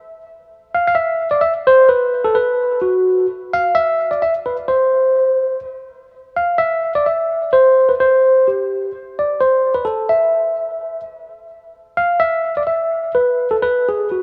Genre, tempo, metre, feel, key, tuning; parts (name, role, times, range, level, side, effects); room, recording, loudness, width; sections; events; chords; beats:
alpine folk; 128 BPM; 3/4; swing 53% on 8ths; A4 = 440 Hz
bright tine electric piano; solo; 0.7-14.2 s; F#4 to F5; -16 LUFS; equal; phaser, digital delay
wet echo chamber reverb, RT60 2.2 s; -16 LUFS; mono
0.0-6.1 A section; 6.1-14.2 A section
0.01 | 0.48 0.95 1.42 | 1.89 2.36 2.83 | 3.29 3.76 4.22 | 4.69 5.16 5.63 | 6.12 6.59 7.07 | 7.53 8.00 8.47 | 8.93 9.39 9.86 | 10.32 10.79 11.27 | 11.74 12.21 12.68 | 13.15 13.62 14.08